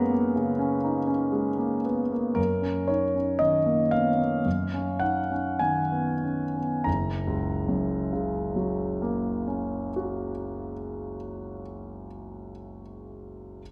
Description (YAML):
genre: classical, impressionist solo piano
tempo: 45-63 BPM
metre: 4/4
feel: rubato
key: F# major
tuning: A4 = 440 Hz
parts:
  - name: clear concert grand piano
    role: solo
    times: 0.0-13.6 s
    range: F#1 to B5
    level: -28 LUFS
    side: equal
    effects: none
room: wet concert hall reverb, RT60 2.0 s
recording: none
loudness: -27 LUFS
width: mono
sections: 0.0-2.4 A section; 2.4-6.9 B section; 6.9-11.3 C section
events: slowing down 0.0-6.9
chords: 0.0 F#add9; 2.4 F#6; 4.4 B69/F#; 6.9 F#